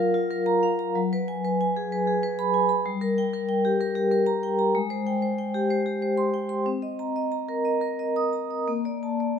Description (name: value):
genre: classical, contemporary piece for solo vibraphone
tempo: 94 BPM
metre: 3/4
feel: rubato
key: unclear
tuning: A4 = 440 Hz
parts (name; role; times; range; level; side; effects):
- vibraphone with medium hard mallets; solo; 0.0-9.4 s; Gb3 to Eb6; -23 LUFS; equal; none
room: moderate recital hall reverb, RT60 1.4 s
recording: none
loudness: -23 LUFS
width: side -7 dB against mid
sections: 0.0-9.4 A section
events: none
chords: 0.0 Gbmaj7; 1.0 B5/F#; 2.9 Gm; 4.8 Abmaj7; 6.7 Cm7; 8.7 Bbmaj7